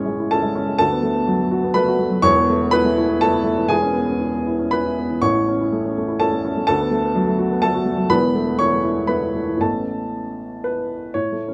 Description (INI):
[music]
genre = neoclassical minimalist piano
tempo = 123 BPM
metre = 3/4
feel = rubato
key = A major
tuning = A4 = 441 Hz
[part]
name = warm upright piano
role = solo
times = 0.0-11.5 s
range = E1 to C#6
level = -20 LUFS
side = equal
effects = none
[sound]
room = light reverb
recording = none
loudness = -19 LUFS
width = mono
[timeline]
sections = 0.0-11.1 A section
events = none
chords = 0.0 Amaj7; 0.8 D6; 2.2 Esus4; 3.7 C#m7/E; 5.2 A; 6.7 D6; 8.1 Esus4; 9.6 Aadd9